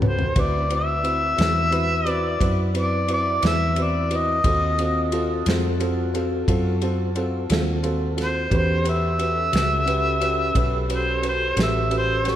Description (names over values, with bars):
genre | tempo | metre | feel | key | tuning
slow blues | 59 BPM (dotted quarters) | 12/8 | straight | unclear | A4 = 439 Hz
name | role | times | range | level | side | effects
dark upright piano | accompaniment | 0.0-12.4 s | C4 to B4 | -28 LUFS | right 1 dB | slapback echo
mellow tonewheel organ | sustained chords | 0.0-12.4 s | C4 to B4 | -30 LUFS | left 1 dB | slow rotary speaker
vintage muted fingered electric bass | bass | 0.0-12.4 s | A1 to F#2 | -25 LUFS | equal | none
warm soul drum kit | drums | 0.0-12.4 s | kick drum, ride cymbal, snare drum, toms | -27 LUFS | equal | none
mellow harmonica | melody | 0.1-12.4 s | C5 to E5 | -23 LUFS | equal | overdrive, slapback echo
room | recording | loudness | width
moderate lush hall reverb, RT60 1.8 s, small room ambience | big arena sound | -19 LUFS | side -11 dB against mid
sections
0.0-12.4 A section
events
drum fill 0.0-0.4; harmonica solo 0.0-12.4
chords
0.4 D13; 4.4 D#dim7; 8.5 A13